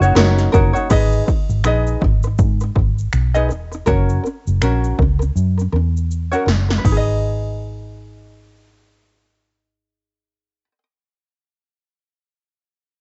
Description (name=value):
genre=acoustic pop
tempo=81 BPM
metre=4/4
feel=swing 60% on 16ths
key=G# minor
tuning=A4 = 441 Hz
part: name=overdriven reed electric piano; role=accompaniment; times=0.0-0.9 s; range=A#3 to D#5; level=-28 LUFS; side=equal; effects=cassette tape
part: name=ukulele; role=accompaniment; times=0.0-10.8 s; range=C#4 to D#5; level=-22 LUFS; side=equal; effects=cassette tape
part: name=vintage muted fingered electric bass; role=bass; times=0.0-10.7 s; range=E1 to G#2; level=-20 LUFS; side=equal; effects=none
part: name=80s electronic pad drums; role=drums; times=0.0-7.1 s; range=crash cymbal, finger snaps, kick drum, shaker, snare drum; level=-21 LUFS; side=equal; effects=none
room=digital ambience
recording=home recording on cassette, nothing above 7.9 kHz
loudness=-17 LUFS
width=mono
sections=0.9-6.8 A section; 6.8-9.8 B section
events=drum fill 5.4-6.8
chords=0.0 D#m7/F#; 0.9 G#m; 3.9 F#; 6.8 G#m